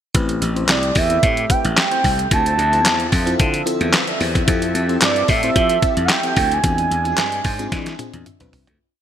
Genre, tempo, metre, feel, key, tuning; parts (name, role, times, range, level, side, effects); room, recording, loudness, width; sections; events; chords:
early-eighties boogie funk; 111 BPM; 4/4; straight; A minor; A4 = 440 Hz
FM electric piano with soft pad layer; accompaniment; 0.1-8.8 s; C4 to C6; -26 LUFS; left 3 dB; chorus, phaser
lush unison pad; sustained chords; 0.1-8.8 s; D3 to E5; -29 LUFS; equal; chorus
slap bass; bass; 0.1-8.8 s; A1 to F3; -21 LUFS; equal
detuned 8-bit digital drum machine; drums; 0.1-8.8 s; handclaps, hi-hat, kick drum, snare drum, toms; -19 LUFS; equal
gliding portamento lead; melody; 0.7-8.3 s; D5 to A5; -20 LUFS; right 4 dB; chorus
moderate lush hall reverb, RT60 2.3 s; bright 1980s-style digital production; -15 LUFS; side -9 dB against mid
0.1-8.8 verse
fade-out 6.6-8.8; FM electric piano fill 7.2-8.8; drum fill 7.7-8.8
0.1 Am9; 2.3 Dm9; 4.5 Fmaj9; 6.6 E7b9b13